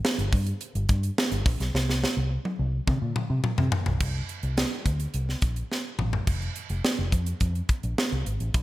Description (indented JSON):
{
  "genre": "polished 1980s jazz-funk pop",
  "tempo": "106 BPM",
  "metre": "4/4",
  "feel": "straight",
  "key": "unclear",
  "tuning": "A4 = 440 Hz",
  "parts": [
    { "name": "crisp fusion drum kit", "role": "drums", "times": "0.0-8.6 s", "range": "crash cymbal, hi-hat, kick drum, snare drum, toms", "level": "-26 LUFS", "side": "equal", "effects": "gated reverb" },
    { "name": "vintage muted fingered electric bass", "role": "bass", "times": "0.2-8.6 s", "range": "F1 to C3", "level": "-27 LUFS", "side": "equal", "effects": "none" }
  ],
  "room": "little or no reverb",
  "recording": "none",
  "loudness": "-24 LUFS",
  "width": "side -16 dB against mid",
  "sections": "0.0-4.0 A section; 4.0-6.3 B section; 6.3-8.6 C section",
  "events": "drum fill 1.7-4.0, 5.7-6.3",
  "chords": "none",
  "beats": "0.05 0.61 1.18 | 1.74 2.31 2.88 3.44 | 4.01 4.58 5.14 5.71 | 6.28 6.84 7.41 7.98 | 8.54"
}